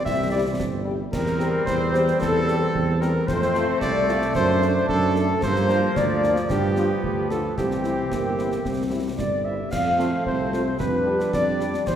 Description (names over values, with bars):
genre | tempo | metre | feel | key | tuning
military-style march for wind band | 112 BPM | 2/4 | straight | F major | A4 = 440 Hz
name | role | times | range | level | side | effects
dark cornet | melody | 0.0-12.0 s | G4 to F5 | -28 LUFS | right 1 dB | none
mellow hollow large flute ensemble | second line | 0.0-12.0 s | G4 to F5 | -26 LUFS | left 1 dB | none
bright trombone section | sustained chords | 0.0-12.0 s | E3 to D4 | -28 LUFS | right 1 dB | none
dark tuba | bass | 0.1-12.0 s | G1 to G2 | -25 LUFS | right 1 dB | none
concert snare drum, concert bass drum and clash cymbals | drums | 0.1-12.0 s | none | -33 LUFS | equal | none
warm French horn section | accompaniment | 0.3-11.7 s | G3 to G4 | -32 LUFS | left 3 dB | none
dark euphonium | second line | 8.1-9.7 s | G3 to C4 | -32 LUFS | left 1 dB | none
room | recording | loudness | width
wet concert hall reverb, RT60 2.0 s | heard from further back in the room | -20 LUFS | side -9 dB against mid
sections
0.0-9.7 A section; 9.7-12.0 B section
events
none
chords
0.0 C; 1.1 C7/E; 3.3 F; 4.4 D7/F#; 5.4 Gm7; 6.5 G7; 7.6 C; 9.7 F; 10.8 G7/F